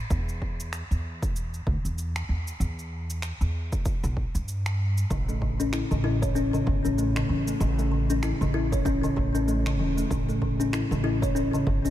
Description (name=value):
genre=organic downtempo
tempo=96 BPM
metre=4/4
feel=swing 58% on 16ths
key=unclear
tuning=A4 = 440 Hz
part: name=upright bass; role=bass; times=0.1-11.9 s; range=E1 to G2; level=-28 LUFS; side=equal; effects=sidechain pumping
part: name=electronic cabasa and finger snaps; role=drums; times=0.1-11.9 s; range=none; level=-38 LUFS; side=right 1 dB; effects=overdrive, studio reverb
part: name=electronic kick drum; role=drums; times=0.1-11.8 s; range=none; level=-29 LUFS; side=equal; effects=overdrive, studio reverb
part: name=kalimba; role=arpeggios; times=5.1-11.9 s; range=C#3 to C#5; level=-26 LUFS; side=left 2 dB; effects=ping-pong delay
room=moderate cathedral reverb, RT60 7.7 s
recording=dreamy mix soaked in reverb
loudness=-24 LUFS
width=side -12 dB against mid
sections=0.0-11.9 A section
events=none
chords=0.1 Em; 5.1 A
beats=| 0.10 0.73 1.35 1.98 | 2.60 3.23 3.85 4.48 | 5.10 5.73 6.35 6.98 | 7.60 8.23 8.85 9.48 | 10.10 10.73 11.35